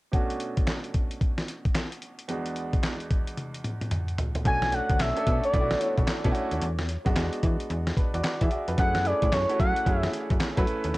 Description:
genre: R&B, new jack swing.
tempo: 111 BPM.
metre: 4/4.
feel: swing 63% on 16ths.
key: B dorian.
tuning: A4 = 440 Hz.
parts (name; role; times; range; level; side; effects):
clear grand piano; accompaniment; 0.1-11.0 s; E2 to F#5; -32 LUFS; right 1 dB; cassette tape.
dusty soul sampler-style drum kit; drums; 0.1-11.0 s; handclaps, hi-hat, kick drum, snare drum, toms; -26 LUFS; equal; cassette tape.
expressive synth lead; melody; 4.5-10.1 s; C#5 to G#5; -28 LUFS; equal; chorus, cassette tape, analog delay.
slap-like FM bass; bass; 4.5-11.0 s; B1 to F#3; -29 LUFS; equal; none.
room: little or no reverb.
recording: home recording on cassette.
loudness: -24 LUFS.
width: side -20 dB against mid.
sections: 0.1-4.5 A section; 4.5-11.0 B section.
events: drum fill 3.4-4.5.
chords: 0.1 Bm7; 2.3 E7; 4.5 Bm7; 6.6 E7; 8.8 F#m7.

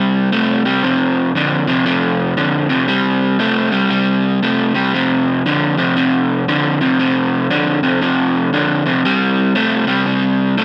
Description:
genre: blues.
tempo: 117 BPM.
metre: 4/4.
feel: swing 64% on 8ths.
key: unclear.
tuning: A4 = 440 Hz.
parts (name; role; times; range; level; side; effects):
crunchy overdriven guitar; solo; 0.0-10.6 s; F2 to A3; -16 LUFS; equal; analog delay.
room: moderate club reverb, RT60 0.6 s.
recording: none.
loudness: -16 LUFS.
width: mono.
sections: 0.0-10.6 A section.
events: none.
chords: 0.0 C5; 0.8 F5; 2.9 C5; 4.9 F5; 9.0 C5.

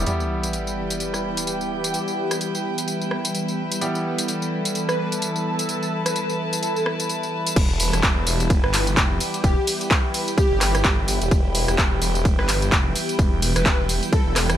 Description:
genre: bass house.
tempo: 128 BPM.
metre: 4/4.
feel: swing 58% on 16ths.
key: E minor.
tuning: A4 = 440 Hz.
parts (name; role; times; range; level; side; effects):
sweeping resonant pad; sustained chords; 0.0-14.6 s; E3 to A4; -28 LUFS; equal; chorus, sidechain pumping.
bright grand piano; stabs; 0.0-7.5 s; G3 to G4; -32 LUFS; equal; vintage 12-bit sampler grit, sidechain pumping, tape echo.
phased detuned saw bass; bass; 0.0, 7.6-14.6 s; E1 to G1; -24 LUFS; equal; phaser, tube saturation, sidechain pumping.
warm studio string section; texture; 0.0-14.6 s; E4 to A5; -30 LUFS; equal; sidechain pumping.
house drum kit; drums; 0.1-14.6 s; crash cymbal, handclaps, hi-hat, ride cymbal, rim click, tambourine; -24 LUFS; equal; overdrive.
sub drop; sound effects; 0.1-1.9 s; none; -31 LUFS; equal; none.
airy dreamy lead; melody; 4.9-14.3 s; G4 to B4; -29 LUFS; equal; chorus, tape echo.
electronic kick drum; drums; 7.6-14.2 s; none; -20 LUFS; equal; overdrive.
room: light reverb, digital ambience.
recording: none.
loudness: -19 LUFS.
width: side -11 dB against mid.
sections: 0.1-7.6 A section; 7.6-14.6 B section.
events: impact 0.1-1.9; drop 7.6-14.6.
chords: 0.1 Em.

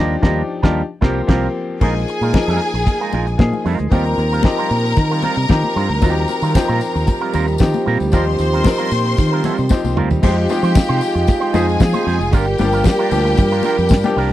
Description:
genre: disco.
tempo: 114 BPM.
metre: 4/4.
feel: straight.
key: unclear.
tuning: A4 = 440 Hz.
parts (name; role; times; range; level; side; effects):
bright baby grand piano; accompaniment; 0.0-14.3 s; F3 to Bb4; -22 LUFS; left 3 dB; none.
electric guitar with an envelope filter; accompaniment; 0.0-14.3 s; G3 to C5; -23 LUFS; right 7 dB; none.
fingered electric bass; bass; 0.0-14.3 s; F1 to F3; -19 LUFS; equal; none.
damped 70s drum kit; drums; 0.2-14.3 s; crash cymbal, hi-hat, kick drum, snare drum, toms; -14 LUFS; equal; none.
clear studio string section; second line; 1.8-14.3 s; G4 to C6; -22 LUFS; left 1 dB; none.
congas; percussion; 1.8-14.2 s; none; -25 LUFS; left 6 dB; none.
mellow French horn section; sustained chords; 6.0-14.3 s; Eb3 to Bb4; -22 LUFS; right 2 dB; none.
tambourine; percussion; 6.0-14.2 s; none; -37 LUFS; left 13 dB; none.
room: little or no reverb.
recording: dry, close 1970s-style studio recording.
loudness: -14 LUFS.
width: side -14 dB against mid.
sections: 0.0-1.8 A section; 1.8-10.2 B section; 10.2-14.3 C section.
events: band accent 0.0-1.8; drum fill 9.7-10.2.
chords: 0.0 Ebmaj9; 0.8 C7sus4; 1.8 Bb7sus4; 3.9 Eb69; 10.2 Fm9; 12.3 Gm7.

